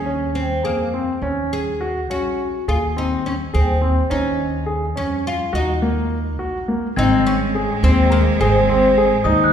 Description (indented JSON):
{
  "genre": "contemporary instrumental, chamber music in an uneven meter",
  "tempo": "209 BPM (eighths)",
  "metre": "5/8",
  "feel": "straight",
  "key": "unclear",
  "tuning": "A4 = 440 Hz",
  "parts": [
    { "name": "oud", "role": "melody", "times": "0.0-9.5 s", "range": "Bb3 to Ab4", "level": "-22 LUFS", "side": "left 1 dB", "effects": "none" },
    { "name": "upright bass", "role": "bass", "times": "0.0-9.5 s", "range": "Ab1 to F2", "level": "-21 LUFS", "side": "equal", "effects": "none" },
    { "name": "clear concert grand piano", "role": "arpeggios", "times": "0.1-9.5 s", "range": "Bb3 to Ab4", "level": "-21 LUFS", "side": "left 1 dB", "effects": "none" },
    { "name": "clear cello", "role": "second line", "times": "7.0-9.5 s", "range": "Ab3", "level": "-22 LUFS", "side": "right 2 dB", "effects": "none" },
    { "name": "glockenspiel with soft plastic mallets", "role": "texture", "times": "7.0-9.5 s", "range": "Eb6 to Ab6", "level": "-24 LUFS", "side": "right 2 dB", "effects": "none" }
  ],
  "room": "wet scoring stage reverb, RT60 1.9 s",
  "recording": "heard from further back in the room",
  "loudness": "-16 LUFS",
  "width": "side -8 dB against mid",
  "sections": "0.0-7.0 A section; 7.0-9.5 B section",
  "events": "none",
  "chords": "0.0 Eb13sus4; 1.2 Ebm7; 2.7 Ab/Eb; 4.1 Eb9sus4; 5.5 Ebm; 7.0 Ab",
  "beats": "0.07 0.36 0.65 0.94 | 1.23 1.52 1.81 2.10 2.39 | 2.68 2.96 3.25 3.54 3.82 | 4.11 4.39 4.67 4.96 5.25 | 5.53 5.82 6.11 6.39 6.68 | 6.97 7.26 7.55 7.83 8.12 | 8.41 8.69 8.98 9.26"
}